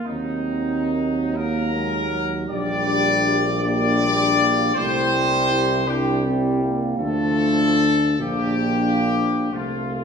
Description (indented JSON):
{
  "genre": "classical, hymn-like piece for brass band",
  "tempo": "44-55 BPM (dotted quarters)",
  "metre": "6/8",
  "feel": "rubato",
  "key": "unclear",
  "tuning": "A4 = 441 Hz",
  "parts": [
    { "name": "warm trumpet section", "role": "melody", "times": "0.0-10.0 s", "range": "Eb4 to D5", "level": "-23 LUFS", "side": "left 3 dB", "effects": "none" },
    { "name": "dark French horn section", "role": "second line", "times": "0.0-10.0 s", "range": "Gb3 to E4", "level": "-26 LUFS", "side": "right 5 dB", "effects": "none" },
    { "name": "dark euphonium", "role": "accompaniment", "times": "0.0-10.0 s", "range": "A3 to E4", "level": "-26 LUFS", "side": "left 4 dB", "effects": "none" },
    { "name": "clear trombone", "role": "accompaniment", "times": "0.1-10.0 s", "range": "F3 to G3", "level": "-29 LUFS", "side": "right 2 dB", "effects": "none" },
    { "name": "mellow tuba", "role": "bass", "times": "0.1-10.0 s", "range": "Bb1 to Eb2", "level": "-26 LUFS", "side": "equal", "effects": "none" }
  ],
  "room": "wet recital hall reverb, RT60 1.8 s",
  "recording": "recorded in a church or concert hall",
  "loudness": "-18 LUFS",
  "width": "side -6 dB against mid",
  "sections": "0.0-10.0 A section",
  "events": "none",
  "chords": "0.1 Ebm; 2.5 Gm/Bb; 4.8 C; 7.0 Dm; 8.2 Bb; 9.5 F/C"
}